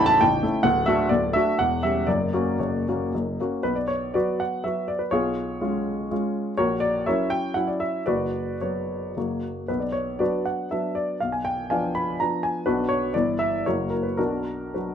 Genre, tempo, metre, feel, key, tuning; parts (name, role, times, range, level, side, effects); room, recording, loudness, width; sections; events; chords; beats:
classical, romantic triple-time dance for piano with dotted rhythms; 99-140 BPM; 3/4; rubato; B minor; A4 = 440 Hz
warm baby grand piano; solo; 0.0-14.9 s; A0 to B5; -22 LUFS; equal
light reverb; close, detailed microphones; -22 LUFS; side -8 dB against mid
0.0-3.6 A section; 3.6-14.9 B section
0.0 A7; 0.7 D; 1.6 C#dim/E; 2.1 F#; 3.6 B5; 5.1 C#7/B; 6.6 F#7/A#; 8.1 F#sus4; 9.2 F#; 9.7 Bm; 11.2 Bdim; 12.7 Bm; 13.1 Em/G; 13.7 F#7; 14.2 Bm
0.22 | 0.66 1.11 1.59 | 2.07 2.59 3.13 | 3.63 4.14 4.66 | 5.13 5.62 6.11 | 6.58 7.06 7.56 | 8.06 8.61 9.17 | 9.69 10.21 10.72 | 11.21 11.71 12.20 | 12.66 13.13 13.65 | 14.18 14.76